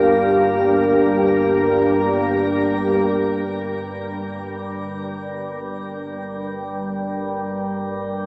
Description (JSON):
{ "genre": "dark ambient drone", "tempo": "free time", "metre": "none", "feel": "none", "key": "G minor", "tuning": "A4 = 439 Hz", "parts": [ { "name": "deep dark ambient pad", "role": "sustained chords", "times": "0.0-8.3 s", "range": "D4 to G5", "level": "-19 LUFS", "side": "equal", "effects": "chorus, built-in reverb, shimmer reverb" }, { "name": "organ-like drone", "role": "drone", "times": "0.0-8.3 s", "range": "G1 to G2", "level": "-25 LUFS", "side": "equal", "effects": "ensemble chorus, built-in reverb" }, { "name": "icy glass pad", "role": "texture", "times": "0.0-3.5 s", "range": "Bb3 to Bb4", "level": "-31 LUFS", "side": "equal", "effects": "chorus, built-in reverb, shimmer reverb" } ], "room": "wet huge ambient reverb, RT60 7.6 s", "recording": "small speaker sound", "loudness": "-18 LUFS", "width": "side -25 dB against mid", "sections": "0.0-3.5 A section; 3.5-8.3 B section", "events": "fade-in on ambient pad 3.5-8.3", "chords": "0.0 Gm" }